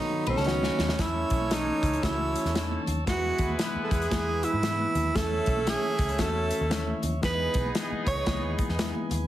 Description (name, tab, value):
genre	uptempo 1960s-style soul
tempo	115 BPM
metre	4/4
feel	swing 61% on 8ths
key	E major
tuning	A4 = 439 Hz
part	breathy tenor saxophone	melody	0.0-8.6 s	C#4 to C#5	-29 LUFS	right 3 dB	slapback echo
part	barky reed electric piano	accompaniment	0.0-9.2 s	D#3 to A4	-35 LUFS	left 5 dB	overdrive
part	tonewheel organ	sustained chords	0.0-9.3 s	F#4 to E6	-39 LUFS	equal	stopped rotary speaker
part	clean electric guitar	riff	0.0-1.0 s	A3 to C#5	-35 LUFS	left 8 dB	none
part	congas	percussion	0.1-9.2 s	none	-40 LUFS	right 4 dB	none
part	vintage muted picked electric bass	bass	0.3-9.3 s	B1 to G#2	-31 LUFS	equal	none
part	natural country drum kit	drums	0.3-9.2 s	hi-hat, kick drum, ride cymbal, snare drum	-31 LUFS	equal	none
part	clear horn section	second line	1.0-9.1 s	E3 to E5	-36 LUFS	left 1 dB	none
room	light reverb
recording	heavily compressed radio sound, multiband compression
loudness	-25 LUFS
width	side -13 dB against mid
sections	1.0-9.3 A section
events	band accent 0.0-1.0; drum fill 0.5-1.0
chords	0.0 B; 1.0 A; 3.1 E; 5.2 A; 7.2 E